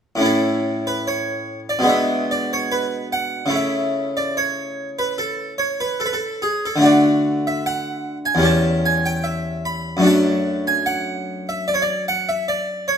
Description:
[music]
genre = classical, baroque-style suite movement for harpsichord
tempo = 74 BPM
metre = 4/4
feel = rubato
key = A major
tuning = A4 = 441 Hz
[part]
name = harpsichord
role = solo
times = 0.2-13.0 s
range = E2 to B5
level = -18 LUFS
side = equal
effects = none
[sound]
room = wet stone room reverb, RT60 1.2 s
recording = none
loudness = -18 LUFS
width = side -8 dB against mid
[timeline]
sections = 0.2-13.0 A section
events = none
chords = 0.2 A; 1.9 G#dim/B; 3.5 A/C#; 6.8 D; 8.5 C#dim/E; 10.1 D/F#

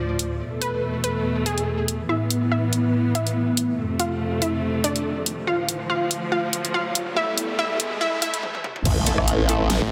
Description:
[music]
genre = heavy wobble dubstep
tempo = 142 BPM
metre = 4/4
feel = swing 55% on 16ths, half-time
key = A minor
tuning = A4 = 437 Hz
[part]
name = unison pluck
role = melody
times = 0.0-8.4 s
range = D4 to F5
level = -29 LUFS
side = equal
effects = tape echo
[part]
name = muted studio string section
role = sustained chords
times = 0.0-9.9 s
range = D2 to C4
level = -27 LUFS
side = equal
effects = sidechain pumping
[part]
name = dubstep drum kit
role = drums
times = 0.2-9.8 s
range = crash cymbal, hi-hat, snare drum, toms, woodblock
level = -27 LUFS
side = equal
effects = none
[part]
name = riser and impact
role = sound effects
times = 4.5-9.9 s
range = none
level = -34 LUFS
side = equal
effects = none
[part]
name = formant-sweep wobble bass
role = bass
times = 8.9-9.8 s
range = A1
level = -23 LUFS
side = equal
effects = chorus, overdrive
[part]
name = electronic kick drum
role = drums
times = 8.9 s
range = none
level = -27 LUFS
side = equal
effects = none
[part]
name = orchestra-hit-like synth stab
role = stabs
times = 9.1-9.5 s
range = A3 to A4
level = -31 LUFS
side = equal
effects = built-in reverb, tape echo
[part]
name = snarling distorted saw bass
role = bass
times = 9.8-9.9 s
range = A1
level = -24 LUFS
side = equal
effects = overdrive
[sound]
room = moderate lush hall reverb, RT60 1.9 s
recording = dense, heavily limited modern master, high-pass filter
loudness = -23 LUFS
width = mono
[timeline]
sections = 0.0-2.1 A section; 2.1-8.9 B section; 8.9-9.9 C section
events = build-up 2.1-8.9; filter sweep on synth pluck 2.1-8.9; filter sweep 2.1-8.9; riser 4.5-8.4; drum fill 8.4-8.9; stop 8.4-8.9; drop 8.9-9.9; impact 8.9-9.9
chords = 0.4 Esus4; 2.1 Asus2; 3.8 F; 5.5 Dm; 7.2 Esus4; 8.9 Am

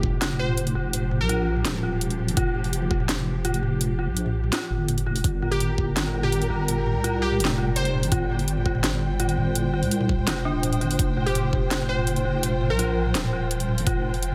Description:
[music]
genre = half-time drum and bass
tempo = 167 BPM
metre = 4/4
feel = half-time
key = unclear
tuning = A4 = 441 Hz
[part]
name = glassy wavetable pluck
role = melody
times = 0.0-1.6, 5.5-8.0, 11.3-13.1 s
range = G4 to C5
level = -33 LUFS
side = equal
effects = chorus, dub echo
[part]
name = warm symphonic string section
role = sustained chords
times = 0.0-14.3 s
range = F3 to G5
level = -34 LUFS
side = equal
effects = sidechain pumping
[part]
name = dark detuned synth bell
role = arpeggios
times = 0.0-14.3 s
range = D4 to F4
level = -33 LUFS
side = equal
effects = chorus, tremolo, dub echo
[part]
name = deep soft wobble bass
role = bass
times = 0.0-14.3 s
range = D1 to C2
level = -28 LUFS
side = equal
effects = chorus
[part]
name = drum and bass drum kit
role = drums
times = 0.0-14.3 s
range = hi-hat, snare drum, toms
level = -30 LUFS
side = equal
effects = overdrive
[part]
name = electronic kick drum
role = drums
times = 0.0-0.1, 2.4-3.0, 5.2-5.9, 8.1-11.6, 13.9 s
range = none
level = -27 LUFS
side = equal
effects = overdrive
[part]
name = impact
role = sound effects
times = 0.0-0.9 s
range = none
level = -41 LUFS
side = equal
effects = none
[sound]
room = light reverb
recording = none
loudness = -24 LUFS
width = mono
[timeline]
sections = 0.0-14.3 A section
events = impact 0.0-0.9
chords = 0.0 Fsus2; 5.2 Gm7; 11.0 Fsus2

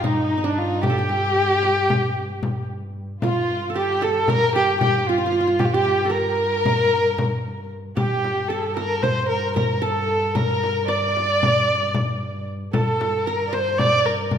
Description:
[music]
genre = Turkish makam ensemble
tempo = 227 BPM (eighths)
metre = 9/8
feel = straight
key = G makam nihavent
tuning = A4 = 441 Hz
[part]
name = dark kamancheh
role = melody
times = 0.0-14.3 s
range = D4 to D5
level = -22 LUFS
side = equal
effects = none
[part]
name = dark studio violin section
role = second line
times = 0.0-14.3 s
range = Eb4 to D5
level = -26 LUFS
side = left 2 dB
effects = none
[part]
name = qanun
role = second line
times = 0.0-14.4 s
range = D4 to D5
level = -27 LUFS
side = right 5 dB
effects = none
[part]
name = muted double bass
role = drone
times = 0.0-14.4 s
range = G2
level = -30 LUFS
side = equal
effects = none
[part]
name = frame drum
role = percussion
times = 0.0-14.4 s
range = none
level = -26 LUFS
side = left 2 dB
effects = none
[sound]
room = wet recital hall reverb, RT60 1.7 s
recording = minimal, uncompressed stereo recording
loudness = -18 LUFS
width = side -8 dB against mid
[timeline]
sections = 0.0-3.2 A section; 3.2-14.4 B section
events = none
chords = none

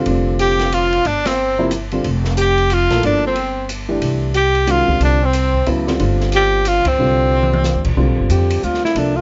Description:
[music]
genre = modal jazz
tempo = 182 BPM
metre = 3/4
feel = swing 62% on 8ths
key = C mixolydian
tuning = A4 = 441 Hz
[part]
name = warm upright piano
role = accompaniment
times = 0.0-9.2 s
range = C3 to E5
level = -23 LUFS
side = equal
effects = none
[part]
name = upright bass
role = bass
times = 0.0-9.2 s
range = F1 to F2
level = -21 LUFS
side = equal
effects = none
[part]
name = open jazz drum kit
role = drums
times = 0.1-9.1 s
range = crash cymbal, hi-hat, kick drum, ride cymbal, snare drum, toms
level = -29 LUFS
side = equal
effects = none
[part]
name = edgy tenor saxophone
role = melody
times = 0.4-7.9 s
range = C4 to G4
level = -20 LUFS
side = equal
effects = none
[part]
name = clear alto saxophone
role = second line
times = 0.4-9.2 s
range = C4 to G4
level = -22 LUFS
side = equal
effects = none
[sound]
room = little or no reverb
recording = nothing above 7.7 kHz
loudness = -16 LUFS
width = mono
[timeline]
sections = 0.0-8.0 A section; 8.0-9.2 B section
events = band accent 1.2, 6.8; drum fill 7.3-7.6; alto saxophone solo 8.0-9.2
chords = 0.0 Csus4; 8.0 C13sus4

